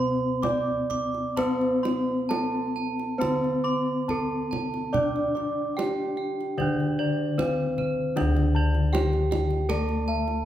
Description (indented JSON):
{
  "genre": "Javanese gamelan",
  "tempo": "64-78 BPM",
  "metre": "4/4",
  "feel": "straight",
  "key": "unclear",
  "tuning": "A4 = 440 Hz",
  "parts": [
    { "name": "gamelan-type bronze metallophone", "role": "melody", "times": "0.0-10.4 s", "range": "C4-40c to D5", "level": "-29 LUFS", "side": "right 2 dB", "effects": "none" },
    { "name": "gamelan-type bronze metallophone", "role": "accompaniment", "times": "0.0-10.4 s", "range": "D3 to D4", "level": "-29 LUFS", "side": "left 2 dB", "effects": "none" },
    { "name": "gamelan-type bossed gongs", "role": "arpeggios", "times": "0.0-10.4 s", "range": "C5-40c to D6", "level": "-35 LUFS", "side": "left 4 dB", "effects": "none" },
    { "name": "gamelan-type bronze metallophone", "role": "arpeggios", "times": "0.0-10.4 s", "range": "C5-40c to D6", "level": "-33 LUFS", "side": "right 4 dB", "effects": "none" },
    { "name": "gamelan-type bossed gongs", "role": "bass", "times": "0.0-10.4 s", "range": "D2 to D5", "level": "-30 LUFS", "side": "left 1 dB", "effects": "none" },
    { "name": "kendang", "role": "percussion", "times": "0.4-10.4 s", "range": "none", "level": "-35 LUFS", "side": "right 3 dB", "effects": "none" }
  ],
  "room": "wet recital hall reverb, RT60 1.6 s",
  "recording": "recorded in a church or concert hall",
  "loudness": "-23 LUFS",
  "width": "side -11 dB against mid",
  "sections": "0.0-8.2 A section; 8.2-10.4 B section",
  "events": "none",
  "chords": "none"
}